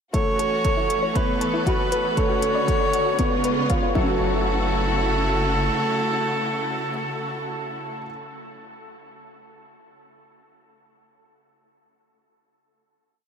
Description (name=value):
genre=piano and strings electronica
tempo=118 BPM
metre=4/4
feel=straight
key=F# minor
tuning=A4 = 441 Hz
part: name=warm viola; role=melody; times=0.1-8.0 s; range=A4 to C#5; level=-26 LUFS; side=right 1 dB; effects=tape echo
part: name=rich studio string section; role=sustained chords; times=0.1-8.0 s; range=C#3 to A4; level=-28 LUFS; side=equal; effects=sidechain pumping
part: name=soft round pluck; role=arpeggios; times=0.1-4.4 s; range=E4 to A5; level=-32 LUFS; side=left 3 dB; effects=chorus, sidechain pumping, tape echo
part: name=dark upright piano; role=riff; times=0.1-8.1 s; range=F#3 to F#4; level=-26 LUFS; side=equal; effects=analog chorus, tape echo
part: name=round analog bass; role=bass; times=0.1-5.7 s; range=F#1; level=-26 LUFS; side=equal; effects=sidechain pumping, high-pass filter
part: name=electronic hi-hat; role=drums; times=0.1-3.8 s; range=none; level=-33 LUFS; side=left 4 dB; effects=none
part: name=electronic kick drum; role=drums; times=0.1-4.1 s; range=none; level=-25 LUFS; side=equal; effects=none
room=wet huge ambient reverb, RT60 8.3 s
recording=dreamy mix soaked in reverb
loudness=-20 LUFS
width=side -7 dB against mid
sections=0.1-4.2 build; 4.2-8.3 final hit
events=build-up 0.1-4.2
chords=0.1 F#m7; 1.2 Esus4; 2.2 Dmaj7; 3.2 C#7; 4.0 F#m7